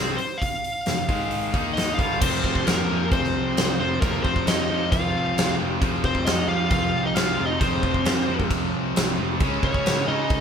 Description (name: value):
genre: hard rock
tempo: 134 BPM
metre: 4/4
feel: straight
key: F minor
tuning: A4 = 440 Hz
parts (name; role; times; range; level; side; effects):
- smooth overdriven lead guitar; melody; 0.0-10.4 s; Ab4 to F5; -27 LUFS; equal; none
- distorted electric guitar; riff; 0.0-10.4 s; F2 to Eb4; -28 LUFS; left 9 dB; distortion
- distorted electric guitar; riff; 0.0-10.4 s; F2 to Eb4; -29 LUFS; right 7 dB; distortion
- fingered electric bass; bass; 0.0-10.4 s; F1 to Db3; -30 LUFS; right 1 dB; none
- huge arena drum kit; drums; 0.2-10.4 s; crash cymbal, hi-hat, kick drum, snare drum; -24 LUFS; equal; none
- dark smooth lead guitar; second line; 1.8-10.4 s; Bb3 to F4; -31 LUFS; right 1 dB; overdrive
- bright tonewheel organ; sustained chords; 2.2-10.4 s; Db4 to G5; -40 LUFS; equal; none
room: light reverb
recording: band playing live in one room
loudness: -20 LUFS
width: side -7 dB against mid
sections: 0.0-2.2 A section; 2.2-10.4 B section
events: none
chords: 0.0 F5; 1.1 Ab5; 1.5 Eb5; 2.0 Dmadd11/G; 2.2 F5; 9.4 Db5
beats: | 0.41 0.86 1.31 1.76 | 2.21 2.66 3.11 3.56 | 4.01 4.46 4.91 5.36 | 5.81 6.26 6.71 7.16 | 7.61 8.06 8.51 8.95 | 9.40 9.85 10.30